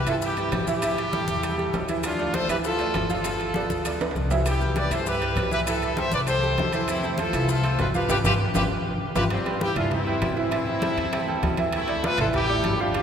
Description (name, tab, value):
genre	latin, salsa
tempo	198 BPM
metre	4/4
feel	straight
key	C major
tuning	A4 = 441 Hz
part	bright horn section	melody	0.0-13.0 s	G3 to E5	-26 LUFS	left 1 dB	none
part	bright concert grand piano	accompaniment	0.0-13.0 s	E3 to F5	-29 LUFS	right 4 dB	none
part	upright bass	bass	0.0-13.0 s	G1 to A2	-29 LUFS	left 1 dB	none
part	maracas	percussion	0.1-9.2 s	none	-41 LUFS	left 7 dB	none
part	timbales	percussion	0.1-13.0 s	none	-33 LUFS	right 3 dB	none
part	bongos	percussion	0.2-13.0 s	none	-36 LUFS	left 4 dB	none
part	congas	percussion	0.2-13.0 s	none	-32 LUFS	left 1 dB	none
room	wet cathedral reverb, RT60 5.0 s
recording	recorded in a church or concert hall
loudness	-22 LUFS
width	side -8 dB against mid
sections	0.0-9.3 A section; 9.3-13.0 A section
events	drum fill 4.0-4.5, 8.4-9.3; band accent 8.1-9.3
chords	0.0 Cmaj7 (rootless); 0.8 A5; 2.0 Dmadd9; 3.3 G7; 4.5 Cmaj7; 5.7 Am7; 6.9 Fmaj7; 8.1 G7; 9.3 Cmaj7; 10.5 Am7; 11.7 Dmadd9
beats	0.22 0.53 | 0.83 1.13 1.43 1.74 | 2.04 2.34 2.65 2.95 | 3.25 3.55 3.86 4.16 | 4.46 4.77 5.07 5.37 | 5.67 5.98 6.28 6.58 | 6.89 7.19 7.49 7.80 | 8.10 8.40 8.71 9.01 | 9.31 9.62 9.92 10.22 | 10.52 10.83 11.13 11.43 | 11.73 12.04 12.34 12.64 | 12.95